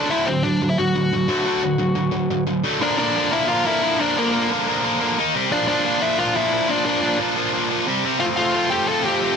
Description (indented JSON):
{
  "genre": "punk",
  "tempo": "178 BPM",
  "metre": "4/4",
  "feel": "straight",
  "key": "unclear",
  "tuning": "A4 = 440 Hz",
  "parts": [
    { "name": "smooth overdriven lead guitar", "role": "melody", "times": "0.0-9.4 s", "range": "Bb3 to A5", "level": "-21 LUFS", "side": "left 2 dB", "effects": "none" },
    { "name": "distorted electric guitar", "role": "riff", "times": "0.0-9.4 s", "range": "Bb2 to Bb4", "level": "-20 LUFS", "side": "equal", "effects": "overdrive" }
  ],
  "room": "light reverb",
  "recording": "none",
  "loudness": "-18 LUFS",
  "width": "side -6 dB against mid",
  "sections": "0.0-2.8 A section; 2.8-9.4 B section",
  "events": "none",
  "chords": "0.0 D; 2.8 Bb; 5.2 Eb5; 5.3 C5; 5.5 Bb; 7.9 C5; 8.2 F"
}